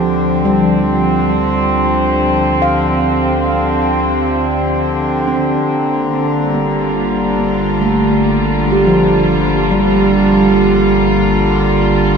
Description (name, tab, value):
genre	ambient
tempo	free time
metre	none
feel	none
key	D minor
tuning	A4 = 440 Hz
part	rich chamber string section	sustained chords	0.0-12.2 s	D3 to F4	-14 LUFS	right 2 dB	none
part	handpan	arpeggios	0.0-12.2 s	F3 to F5	-18 LUFS	equal	tape echo
part	warm sub bass	bass	0.0-12.2 s	G1 to D2	-24 LUFS	left 1 dB	tube saturation
part	hand-pumped harmonium	drone	0.0-12.2 s	D3	-20 LUFS	left 1 dB	none
part	glass harmonica	texture	0.0-12.2 s	Bb3 to Bb5	-22 LUFS	left 1 dB	none
room	wet huge ambient reverb, RT60 8.1 s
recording	dark, warm production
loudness	-11 LUFS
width	side -6 dB against mid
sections	0.0-12.2 A section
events	fade-in on sub bass 0.0-12.2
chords	0.0 Dm7; 5.6 Gm9